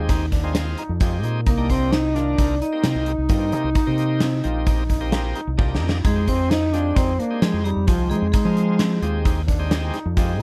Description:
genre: progressive instrumental, band music in an uneven meter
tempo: 131 BPM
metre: 5/4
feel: straight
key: F dorian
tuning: A4 = 440 Hz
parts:
  - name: mellow bass clarinet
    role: melody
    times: 0.0-9.2 s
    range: F3 to Eb4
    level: -26 LUFS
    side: equal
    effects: none
  - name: vibraphone with hard mallets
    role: second line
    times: 0.0-9.2 s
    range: F4 to Eb5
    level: -33 LUFS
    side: equal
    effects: none
  - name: bright tonewheel organ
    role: accompaniment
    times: 0.0-10.4 s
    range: Eb3 to G4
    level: -33 LUFS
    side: equal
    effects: overdrive, slow rotary speaker
  - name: overdriven fingered electric bass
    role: bass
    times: 0.0-10.4 s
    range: Bb1 to F3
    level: -26 LUFS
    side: equal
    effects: none
  - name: warm grand piano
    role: arpeggios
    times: 0.1-10.4 s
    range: C4 to F4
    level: -36 LUFS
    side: equal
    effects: tape echo
  - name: gated 80s drum kit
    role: drums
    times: 0.1-10.3 s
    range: hi-hat, kick drum, snare drum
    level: -24 LUFS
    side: equal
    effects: none
room: little or no reverb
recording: none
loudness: -21 LUFS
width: mono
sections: 0.0-10.4 A section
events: drum fill 5.6-6.0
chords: 0.0 Fm7; 1.5 Cm7; 6.0 Fm7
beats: 0.09 0.55 1.01 | 1.47 1.92 2.38 2.84 3.30 | 3.76 4.21 4.67 5.13 5.59 | 6.04 6.50 6.96 7.42 7.88 | 8.34 8.79 9.25 9.71 10.17

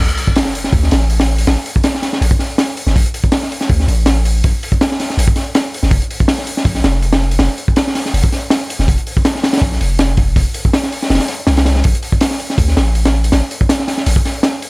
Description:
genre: drum and bass, jungle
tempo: 162 BPM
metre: 4/4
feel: swing 54% on 16ths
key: unclear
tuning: A4 = 445 Hz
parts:
  - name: long sustained 808-style bass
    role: bass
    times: 0.0-14.2 s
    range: D#1 to D2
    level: -14 LUFS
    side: equal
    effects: none
  - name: sub drop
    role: sound effects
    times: 0.1-1.5 s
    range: none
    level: -25 LUFS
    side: equal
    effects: none
  - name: crunchy breakbeat drum kit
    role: drums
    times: 0.1-14.7 s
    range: hi-hat, kick drum, snare drum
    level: -14 LUFS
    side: equal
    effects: none
room: little or no reverb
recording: none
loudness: -12 LUFS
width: side -28 dB against mid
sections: 0.0-14.7 A section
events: drop 0.0-14.7; impact 0.0-1.5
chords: none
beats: 0.36 0.73 1.10 | 1.48 1.84 2.22 2.59 | 2.96 3.33 3.70 4.07 | 4.44 4.81 5.18 5.55 | 5.92 6.29 6.66 7.03 | 7.40 7.77 8.14 8.51 | 8.88 9.25 9.62 9.99 | 10.36 10.73 11.10 11.47 | 11.85 12.22 12.59 12.96 | 13.33 13.70 14.07 14.44

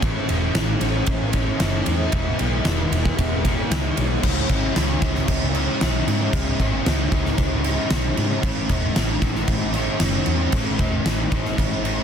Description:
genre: rock, shoegaze and dream pop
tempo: 114 BPM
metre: 4/4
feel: straight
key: unclear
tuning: A4 = 440 Hz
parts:
  - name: overdriven electric guitar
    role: riff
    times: 0.0-12.0 s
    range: A2 to E4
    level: -24 LUFS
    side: left 1 dB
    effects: ensemble chorus
  - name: vintage muted picked electric bass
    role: bass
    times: 0.0-12.0 s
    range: E1 to G#2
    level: -25 LUFS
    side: equal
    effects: none
  - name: huge arena drum kit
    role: drums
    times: 0.0-12.0 s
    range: crash cymbal, kick drum, ride cymbal, snare drum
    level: -22 LUFS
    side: equal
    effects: none
room: small room ambience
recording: dense, heavily limited modern master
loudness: -19 LUFS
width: side -8 dB against mid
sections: 0.0-4.2 A section; 4.2-12.0 B section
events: none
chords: 0.0 A; 2.1 E; 4.2 C#m; 8.4 A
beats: | 0.03 0.55 1.08 1.61 | 2.13 2.66 3.19 3.71 | 4.24 4.76 5.29 5.81 | 6.34 6.86 7.39 7.91 | 8.44 8.96 9.49 10.01 | 10.54 11.06 11.58

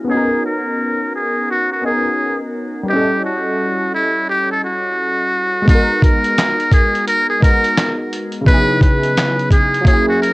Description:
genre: lo-fi hip hop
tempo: 86 BPM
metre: 4/4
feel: swing 62% on 16ths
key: G# minor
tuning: A4 = 436 Hz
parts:
  - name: warm analog keys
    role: accompaniment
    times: 0.0-10.3 s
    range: C#3 to D#5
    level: -19 LUFS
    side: equal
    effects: chorus, cassette tape, low-pass filter
  - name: trumpet with metal mute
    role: melody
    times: 0.1-10.3 s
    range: E4 to B4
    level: -17 LUFS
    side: equal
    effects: low-pass filter, cassette tape, analog delay
  - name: dusty soul sampler-style drum kit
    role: drums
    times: 5.7-10.3 s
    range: handclaps, hi-hat, kick drum, snare drum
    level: -13 LUFS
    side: equal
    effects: vintage 12-bit sampler grit, cassette tape
room: light reverb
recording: home recording on cassette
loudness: -13 LUFS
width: side -21 dB against mid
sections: 0.0-5.7 A section; 5.7-10.3 B section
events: filter sweep 0.0-5.7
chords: 0.1 Bmaj9; 2.9 A7#11; 5.7 G#m9; 8.5 C#m11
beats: | 0.09 0.79 1.49 2.19 | 2.88 3.58 4.28 4.98 | 5.67 6.37 7.07 7.77 | 8.46 9.16 9.86

